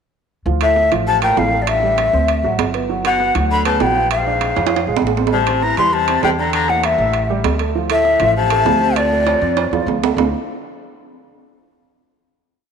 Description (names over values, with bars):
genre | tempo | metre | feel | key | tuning
Afro-Cuban jazz | 198 BPM | 4/4 | straight | D minor | A4 = 439 Hz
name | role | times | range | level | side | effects
dark baby grand piano | accompaniment | 0.5-10.3 s | D3 to F5 | -23 LUFS | right 7 dB | none
upright bass | bass | 0.5-10.3 s | G1 to F2 | -22 LUFS | left 1 dB | none
breathy mellow jazz flute | melody | 0.6-9.9 s | D5 to C6 | -17 LUFS | left 2 dB | none
warm baritone saxophone | second line | 0.6-9.9 s | F2 to E3 | -23 LUFS | left 9 dB | none
timbales | percussion | 0.6-10.2 s | none | -22 LUFS | right 9 dB | none
room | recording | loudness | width
wet echo chamber reverb, RT60 2.3 s | 1960s-style stereo with parts hard left and right | -14 LUFS | side -6 dB against mid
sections
0.5-10.2 A section; 10.2-11.4 final chord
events
drum fill 4.6-5.3, 9.3-10.2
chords
0.5 Dmadd9; 1.7 Am7; 2.3 D9; 2.9 Gmaj7; 4.1 Bb9; 5.3 Am7; 6.5 Em7b5; 7.1 A5; 7.7 Dm7; 10.2 Dm9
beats
| 0.46 0.77 1.07 1.37 | 1.68 1.98 2.29 2.59 | 2.89 3.20 3.50 3.80 | 4.11 4.41 4.71 5.02 | 5.32 5.62 5.93 6.23 | 6.53 6.84 7.14 7.44 | 7.75 8.05 8.35 8.66 | 8.96 9.26 9.57 9.87 | 10.18